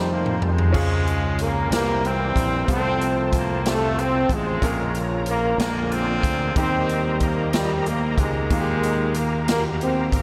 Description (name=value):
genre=slow gospel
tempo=62 BPM (dotted quarters)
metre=6/8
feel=straight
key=unclear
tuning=A4 = 440 Hz
part: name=warm horn section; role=melody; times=0.0-10.2 s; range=C3 to C4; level=-26 LUFS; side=equal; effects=tape echo
part: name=clear grand piano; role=accompaniment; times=0.0-10.2 s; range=Bb2 to Bb4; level=-31 LUFS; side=equal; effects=none
part: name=bright tonewheel organ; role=sustained chords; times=0.0-10.2 s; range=C4 to Bb5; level=-33 LUFS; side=equal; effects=fast rotary speaker, overdrive, chorus vibrato
part: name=fingered electric bass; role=bass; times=0.0-10.2 s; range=G1 to F2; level=-28 LUFS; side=equal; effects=none
part: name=swinging big-band drum kit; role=drums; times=0.3-10.2 s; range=crash cymbal, hi-hat, kick drum, snare drum, toms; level=-28 LUFS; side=equal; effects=none
room=moderate huge ambient reverb, RT60 9.4 s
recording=dreamy mix soaked in reverb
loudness=-22 LUFS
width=mono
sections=0.7-10.2 A section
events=drum fill 0.0-0.7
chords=0.0 F7; 0.7 Db; 1.7 C7; 2.7 F/C; 4.6 Bbm; 5.6 Bb7; 6.6 Eb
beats=| 0.74 1.71 | 2.68 3.65 | 4.62 5.59 | 6.56 7.53 | 8.50 9.47